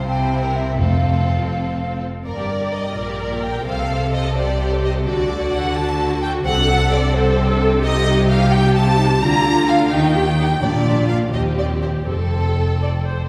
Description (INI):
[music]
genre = quick classical-period movement for symphony orchestra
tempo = 85 BPM (dotted quarters)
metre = 6/8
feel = uneven beats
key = unclear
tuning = A4 = 439 Hz
[part]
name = rich studio violin section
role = melody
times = 0.0-13.3 s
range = C4 to C5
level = -31 LUFS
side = equal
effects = none
[part]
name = mellow silver concert flute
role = second line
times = 0.0-2.0 s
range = E5 to G5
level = -29 LUFS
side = equal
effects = none
[part]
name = rich studio violin section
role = second line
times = 0.0-13.3 s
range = E4 to Bb5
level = -26 LUFS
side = equal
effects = none
[part]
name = warm studio viola section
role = accompaniment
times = 0.0-13.3 s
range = C4 to D5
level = -26 LUFS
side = equal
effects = none
[part]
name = rich studio cello section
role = bass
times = 0.0-13.3 s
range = Eb2 to Eb3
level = -25 LUFS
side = equal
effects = none
[part]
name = rich studio double bass section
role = bass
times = 0.0-13.3 s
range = F1 to Eb2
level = -23 LUFS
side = equal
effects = none
[part]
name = timpani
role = percussion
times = 0.8-1.5, 10.6-11.3 s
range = F2 to Bb2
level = -27 LUFS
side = equal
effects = none
[sound]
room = wet concert hall reverb, RT60 2.4 s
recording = none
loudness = -18 LUFS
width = mono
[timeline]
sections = 0.0-2.3 A section; 2.3-13.3 B section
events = none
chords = 0.1 C; 0.8 F; 2.3 Gm; 3.0 Gm/Bb; 3.7 Cm69; 5.1 D; 6.5 D7/C; 7.8 F7/C; 9.2 Bb/D; 9.9 Eb; 10.6 Bb; 11.3 Cm/Eb; 12.1 F